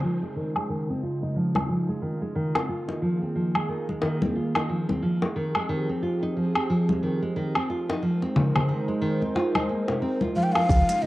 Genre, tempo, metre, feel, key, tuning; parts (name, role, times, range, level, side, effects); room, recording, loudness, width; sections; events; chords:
organic downtempo; 90 BPM; 4/4; swing 59% on 16ths; A4 = 441 Hz
warm analog pad; sustained chords; 0.0-11.1 s; Db3 to C5; -30 LUFS; right 1 dB; chorus, sidechain pumping, cassette tape
nylon-string guitar; arpeggios; 0.0-11.1 s; C3 to F4; -27 LUFS; equal; low-pass filter, cassette tape, analog delay
electronic woodblock, shaker and hi-hat; drums; 0.6-11.0 s; -29 LUFS; equal; low-pass filter on perc, cassette tape, low-pass filter on snare, low-pass filter on hats, low-pass filter on room
congas and bongos; percussion; 1.6-10.7 s; -28 LUFS; left 2 dB
breathy ney; melody; 10.4-11.1 s; Eb5 to G5; -26 LUFS; left 1 dB
woody FM bass; bass; 10.7-10.8 s; Db2; -21 LUFS; equal; sidechain pumping
electronic kick drum; drums; 10.7-10.9 s; -22 LUFS; equal; cassette tape
moderate spring reverb, RT60 2.7 s; home recording on cassette; -23 LUFS; side -17 dB against mid
0.0-10.7 A section
filter sweep on drum 0.0-10.7; filter sweep on nylon-string guitar 0.0-10.7; filter sweep on analog synth pad 0.0-10.7
0.0 Dbmaj7; 2.7 Ebsus4; 5.4 Fm7; 8.0 Ab